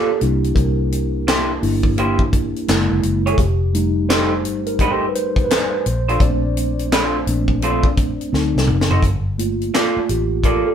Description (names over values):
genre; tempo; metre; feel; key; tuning
R&B, neo-soul; 85 BPM; 4/4; swing 64% on 16ths; G minor; A4 = 438 Hz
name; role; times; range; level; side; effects
electric guitar through a small old amp; second line; 0.0-10.7 s; A3 to D5; -21 LUFS; right 2 dB; none
mellow tine electric piano; accompaniment; 0.0-10.7 s; F#3 to D5; -21 LUFS; right 1 dB; medium stereo tremolo
vintage muted fingered electric bass; bass; 0.2-10.6 s; F1 to D2; -21 LUFS; equal; none
tight funk drum kit; drums; 0.2-10.6 s; handclaps, hi-hat, kick drum, snare drum, toms; -20 LUFS; equal; none
room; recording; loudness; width
light reverb; band playing live in one room; -16 LUFS; side -8 dB against mid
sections
0.0-9.0 A section; 9.0-10.7 B section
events
tine electric piano solo 0.0-9.0, 9.0-10.7; drum fill 8.3-9.0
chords
0.2 C7; 2.7 F#9; 3.4 F9; 5.8 Bbmaj9; 8.3 D7b9; 9.0 Gm9